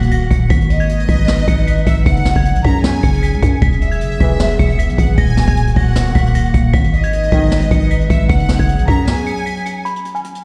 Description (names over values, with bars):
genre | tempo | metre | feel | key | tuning
hip hop, trap | 154 BPM | 4/4 | half-time | G# minor | A4 = 440 Hz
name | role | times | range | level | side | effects
dark detuned synth bell | melody | 0.0-10.4 s | G#5 to C#7 | -28 LUFS | equal | chorus, low-pass filter, tape echo
rich studio violin section | second line | 0.0-9.8 s | D#5 to A#5 | -26 LUFS | equal | tape echo
warbly tape-like pad | sustained chords | 0.0-9.8 s | D#3 to B4 | -26 LUFS | equal | chorus, built-in reverb, phaser
growling 808-style bass | bass | 0.0-9.1 s | D#1 to F#2 | -18 LUFS | equal | none
jazz brush drum kit | drums | 0.0-10.4 s | hi-hat, kick drum, snare drum | -18 LUFS | equal | vintage 12-bit sampler grit
clear brass ensemble | stabs | 4.2-4.5, 7.3-7.6 s | B1 to E3 | -25 LUFS | equal | none
room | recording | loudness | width
small room ambience | played on a big sound system in a bare room, large studio reverb | -14 LUFS | mono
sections
0.0-9.9 A section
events
break 9.1-9.9, 9.9-10.4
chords
0.0 D#m; 0.5 G#m; 2.1 F#sus2; 3.6 E; 5.2 D#m; 6.7 G#m; 8.3 F#sus2; 9.9 N.C.